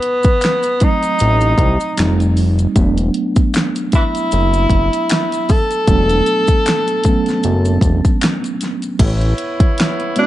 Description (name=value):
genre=R&B, neo-soul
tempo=77 BPM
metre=4/4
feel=swing 57% on 16ths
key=unclear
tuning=A4 = 440 Hz
part: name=warm tenor saxophone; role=melody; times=0.0-10.3 s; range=B3 to A4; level=-17 LUFS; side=equal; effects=slapback echo
part: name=pop drum kit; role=drums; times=0.0-10.3 s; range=crash cymbal, finger snaps, hi-hat, kick drum, snare drum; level=-16 LUFS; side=equal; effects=none
part: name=maracas and finger snaps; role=percussion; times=0.2-9.0 s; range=none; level=-31 LUFS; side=left 6 dB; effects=none
part: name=mellow tine electric piano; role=accompaniment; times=0.8-10.3 s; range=F#3 to F#4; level=-20 LUFS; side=right 2 dB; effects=medium stereo tremolo
part: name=fat analog bass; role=bass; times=1.2-9.3 s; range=E1 to C2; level=-15 LUFS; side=equal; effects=none
part: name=mellow horn section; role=stabs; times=9.0-10.3 s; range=B3 to C#5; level=-22 LUFS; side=right 1 dB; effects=none
room=studio reverb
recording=dark, warm production, nothing above 10.7 kHz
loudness=-13 LUFS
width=side -14 dB against mid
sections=0.0-9.0 A section; 9.0-10.3 B section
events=none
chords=0.0 B7b9; 2.0 F9; 2.8 E9sus4; 9.0 Aadd9